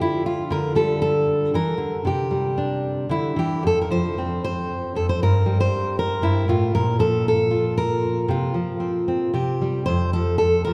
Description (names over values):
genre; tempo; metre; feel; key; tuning
folk, solo fingerstyle acoustic guitar; 116 BPM; 3/4; rubato; F major; A4 = 440 Hz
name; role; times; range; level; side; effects
fingerpicked steel-string acoustic guitar; solo; 0.0-10.7 s; F2 to C5; -22 LUFS; equal; none
room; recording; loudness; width
wet cathedral reverb, RT60 4.9 s; recorded in a church or concert hall; -22 LUFS; mono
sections
0.0-9.9 A section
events
none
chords
0.0 Dm; 0.5 Gmadd9/D; 2.0 Cadd9; 3.6 F5; 5.2 Gm; 6.7 Bb5; 8.3 F5/C; 9.3 C5; 9.9 N.C.